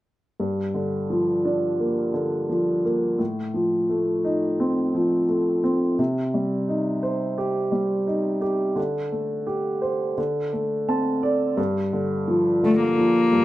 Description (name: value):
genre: folk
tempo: 86 BPM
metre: 4/4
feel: straight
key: G minor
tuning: A4 = 439 Hz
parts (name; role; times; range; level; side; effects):
- warm upright piano; accompaniment; 0.4-13.4 s; G2 to A5; -21 LUFS; equal; none
- warm cello; melody; 12.7-13.4 s; A3 to Bb3; -19 LUFS; left 2 dB; none
room: light reverb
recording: none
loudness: -21 LUFS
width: side -15 dB against mid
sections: 0.4-11.6 A section; 11.6-13.4 B section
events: none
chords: 0.4 Gm7; 3.2 F7/A; 6.0 Cm; 8.8 D7sus4; 10.2 D5; 11.6 Gm7